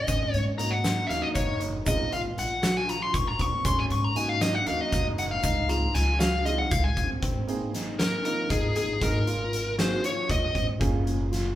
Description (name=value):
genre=progressive instrumental, band music in an uneven meter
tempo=235 BPM (eighths)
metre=7/8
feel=straight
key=Ab mixolydian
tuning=A4 = 440 Hz
part: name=dark smooth lead guitar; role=melody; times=0.0-10.7 s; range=Ab4 to Db6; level=-28 LUFS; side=left 2 dB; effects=overdrive
part: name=tine electric piano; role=arpeggios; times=0.0-11.6 s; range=C4 to Gb4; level=-34 LUFS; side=left 1 dB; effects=medium stereo tremolo
part: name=upright bass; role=bass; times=0.0-11.6 s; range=Gb1 to Bb2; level=-30 LUFS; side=equal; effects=none
part: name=oversized low-tuned drum kit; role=drums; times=0.1-11.4 s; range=hi-hat, kick drum, snare drum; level=-29 LUFS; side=equal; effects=none
part: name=tube shaker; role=percussion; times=0.1-7.1 s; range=none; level=-42 LUFS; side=right 5 dB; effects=none
part: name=warm grand piano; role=accompaniment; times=0.6-11.5 s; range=Ab3 to Ab4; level=-35 LUFS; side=right 2 dB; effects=none
room=wet large studio reverb, RT60 1.5 s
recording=band playing live in one room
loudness=-24 LUFS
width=side -13 dB against mid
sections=0.0-7.2 A section; 7.2-11.6 B section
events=lead electric guitar solo 0.0-7.2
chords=0.1 Ab7sus4; 1.9 Bbm; 3.7 Ab7sus4; 5.4 Dbmaj7; 7.2 Abadd9; 10.8 Gbmaj7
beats=| 0.08 0.34 0.59 0.85 1.10 1.36 1.61 | 1.87 2.12 2.38 2.63 2.89 3.14 3.40 | 3.65 3.91 4.16 4.42 4.67 4.93 5.18 | 5.44 5.69 5.95 6.20 6.46 6.71 6.97 | 7.22 7.48 7.74 7.99 8.25 8.50 8.76 | 9.01 9.27 9.53 9.78 10.04 10.29 10.55 | 10.80 11.06 11.32